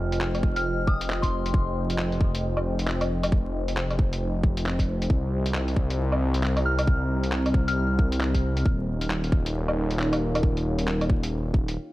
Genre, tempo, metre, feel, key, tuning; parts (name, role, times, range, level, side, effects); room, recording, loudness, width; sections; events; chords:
future garage; 135 BPM; 4/4; swing 60% on 16ths; F minor; A4 = 441 Hz
dark analog pad; sustained chords; 0.0-11.8 s; C4 to Bb5; -32 LUFS; equal; chorus, sidechain pumping
swelling detuned saw bass; bass; 0.0-11.8 s; Eb1 to C2; -26 LUFS; equal; sidechain pumping
lo-fi sampler-style drum kit; drums; 0.1-11.8 s; handclaps, hi-hat, woodblock; -31 LUFS; equal
electronic kick drum; drums; 0.4-11.7 s; -22 LUFS; equal
soft synth bell; melody; 0.6-1.8, 6.7-7.9 s; C6 to F6; -33 LUFS; left 2 dB; chorus, phaser, analog delay
light reverb, digital ambience; vinyl crackle; -22 LUFS; side -17 dB against mid
0.0-11.9 A section
stop 11.8
0.0 Fm9; 5.1 Cm7; 8.7 Eb9